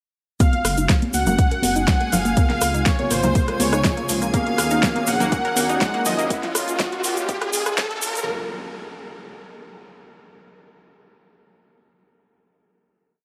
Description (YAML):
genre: progressive house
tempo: 122 BPM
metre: 4/4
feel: straight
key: Bb minor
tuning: A4 = 441 Hz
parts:
  - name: soft supersaw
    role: melody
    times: 0.4-6.3 s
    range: C5 to Gb5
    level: -27 LUFS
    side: equal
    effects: sidechain pumping, dub echo
  - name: warm analog pad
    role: sustained chords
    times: 0.4-8.3 s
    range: C3 to Gb4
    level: -32 LUFS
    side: equal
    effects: chorus, sidechain pumping
  - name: unison pluck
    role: arpeggios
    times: 0.4-6.2 s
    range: F3 to Bb4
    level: -30 LUFS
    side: equal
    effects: sidechain pumping, digital delay
  - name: deep house drum kit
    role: drums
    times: 0.4-8.2 s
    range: hi-hat, rim click, snare drum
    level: -28 LUFS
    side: equal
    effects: studio reverb
  - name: electronic kick drum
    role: drums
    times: 0.4-7.9 s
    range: none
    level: -22 LUFS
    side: equal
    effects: studio reverb
  - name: congas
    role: percussion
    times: 0.4-6.2 s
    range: none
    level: -30 LUFS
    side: equal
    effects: sidechain pumping on perc
  - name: tube shaker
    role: percussion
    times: 0.4-8.3 s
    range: none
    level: -31 LUFS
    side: equal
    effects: none
  - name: riser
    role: sound effects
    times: 3.1-8.3 s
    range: none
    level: -33 LUFS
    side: equal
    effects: none
  - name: backwards swelling texture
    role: texture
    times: 1.5-6.3 s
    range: Ab4 to Ab5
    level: -37 LUFS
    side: equal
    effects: built-in reverb, sidechain pumping
  - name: dark detuned saw bass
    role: bass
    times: 0.6-6.3 s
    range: Gb1 to Eb2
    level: -29 LUFS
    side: equal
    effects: sidechain pumping
room: light reverb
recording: high-pass filter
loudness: -20 LUFS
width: mono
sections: 0.4-8.3 build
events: build-up 0.4-8.3; filter sweep on synth pluck 0.4-6.3; filter sweep on analog synth pad 0.4-8.3; filter sweep 0.4-8.3; riser 3.1-8.3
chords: 0.4 Gbsus2; 2.4 Dbmaj7; 4.3 Ebm7; 6.3 Bbm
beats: | 0.40 0.89 1.39 1.88 | 2.37 2.86 3.35 3.85 | 4.34 4.83 5.32 5.81 | 6.30 6.80 7.29 7.78